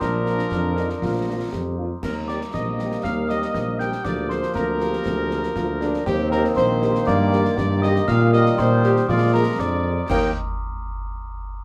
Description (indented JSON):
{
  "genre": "military-style march for wind band",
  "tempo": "119 BPM",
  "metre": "2/4",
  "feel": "straight",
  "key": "Eb major",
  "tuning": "A4 = 440 Hz",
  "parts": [
    { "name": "mellow cornet", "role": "melody", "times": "0.0-10.3 s", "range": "G4 to G5", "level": "-31 LUFS", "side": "equal", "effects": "none" },
    { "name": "glockenspiel with rubber mallets", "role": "second line", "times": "0.0-10.1 s", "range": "G5 to G6", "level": "-32 LUFS", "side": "equal", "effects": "none" },
    { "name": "mellow woodwind section", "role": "second line", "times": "0.0-10.3 s", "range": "G4 to G5", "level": "-33 LUFS", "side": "equal", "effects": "none" },
    { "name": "warm euphonium", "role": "second line", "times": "0.0-9.8 s", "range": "Bb3 to G4", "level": "-30 LUFS", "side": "equal", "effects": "none" },
    { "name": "dark trombone section", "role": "sustained chords", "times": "0.0-10.3 s", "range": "Eb3 to D4", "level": "-30 LUFS", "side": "equal", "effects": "none" },
    { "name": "mellow tuba", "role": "bass", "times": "0.0-10.3 s", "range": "Bb1 to Bb2", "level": "-25 LUFS", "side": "equal", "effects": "none" },
    { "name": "concert snare drum, clash cymbals and concert bass drum", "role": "drums", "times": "0.0-10.4 s", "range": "none", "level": "-34 LUFS", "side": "equal", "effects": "none" },
    { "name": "dark French horn section", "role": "accompaniment", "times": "0.3-10.3 s", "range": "Bb3 to Bb4", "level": "-32 LUFS", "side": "equal", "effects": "none" }
  ],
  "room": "wet studio reverb, RT60 0.6 s",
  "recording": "heard from further back in the room",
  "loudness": "-21 LUFS",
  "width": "mono",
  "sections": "0.0-10.1 A section; 10.1-11.1 B section",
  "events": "none",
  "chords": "0.0 Bb; 2.0 Eb; 4.1 Bb7/D; 6.1 Eb; 7.1 Eb/G; 8.1 Eb/Bb; 9.1 Bb7; 10.1 Eb5",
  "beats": "| 0.01 0.52 | 1.02 1.53 | 2.03 2.54 | 3.04 3.55 | 4.05 4.55 | 5.06 5.56 | 6.07 6.57 | 7.08 7.58 | 8.09 8.59 | 9.09 9.60 | 10.10"
}